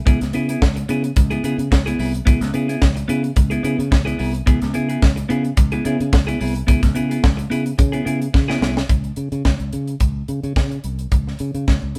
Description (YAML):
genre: disco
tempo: 109 BPM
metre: 4/4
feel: straight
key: unclear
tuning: A4 = 440 Hz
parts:
  - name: semi-hollow electric guitar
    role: accompaniment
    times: 0.1-8.8 s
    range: B3 to G#4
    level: -25 LUFS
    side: equal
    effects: none
  - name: fingered electric bass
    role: bass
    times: 0.1-12.0 s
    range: B#1 to C#3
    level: -25 LUFS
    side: equal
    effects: none
  - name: tight funk drum kit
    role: drums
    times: 0.1-12.0 s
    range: hi-hat, kick drum, snare drum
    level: -20 LUFS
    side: equal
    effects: none
room: light reverb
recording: band playing live in one room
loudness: -19 LUFS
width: mono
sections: 0.0-8.9 A section; 8.9-12.0 B section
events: drum fill 8.3-8.9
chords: 0.1 C#m7; 8.9 N.C.